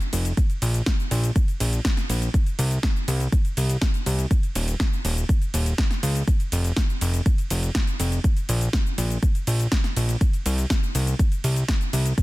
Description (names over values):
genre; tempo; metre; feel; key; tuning
progressive house; 122 BPM; 4/4; straight; unclear; A4 = 440 Hz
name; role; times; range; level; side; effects
deep house drum kit; drums; 0.0-12.2 s; cabasa, hi-hat, ride cymbal, snare drum; -29 LUFS; equal; overdrive, sidechain pumping on perc, sidechain pumping on hats, sidechain pumping on cymbals
fat analog bass; bass; 0.1-12.1 s; Eb1 to Db2; -22 LUFS; equal; sidechain pumping
electronic kick drum; drums; 0.4-12.2 s; none; -21 LUFS; equal; none
room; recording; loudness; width
little or no reverb; dense, heavily limited modern master; -20 LUFS; side -19 dB against mid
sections
0.0-12.2 A section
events
none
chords
none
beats
| 0.37 0.86 1.36 1.85 | 2.34 2.83 3.32 3.82 | 4.31 4.80 5.29 5.78 | 6.28 6.77 7.26 7.75 | 8.24 8.73 9.23 9.72 | 10.21 10.70 11.19 11.69 | 12.18